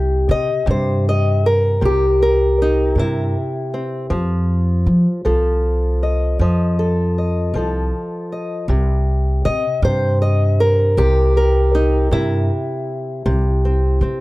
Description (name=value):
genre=acoustic country blues, solo or duo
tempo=52 BPM (dotted quarters)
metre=12/8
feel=straight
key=unclear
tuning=A4 = 440 Hz
part: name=fingerpicked old ladder-braced acoustic guitar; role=melody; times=0.0-14.2 s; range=C3 to Eb5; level=-18 LUFS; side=equal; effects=none
part: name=upright bass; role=bass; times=0.0-14.2 s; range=C2 to F3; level=-17 LUFS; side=equal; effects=none
room=small room ambience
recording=dry, close 1970s-style studio recording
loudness=-15 LUFS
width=side -19 dB against mid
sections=0.0-14.2 A section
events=none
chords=0.0 C7; 4.1 F7; 8.7 C7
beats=0.68 1.82 2.97 | 4.11 5.26 6.40 7.54 | 8.69 9.83 10.97 12.11 | 13.25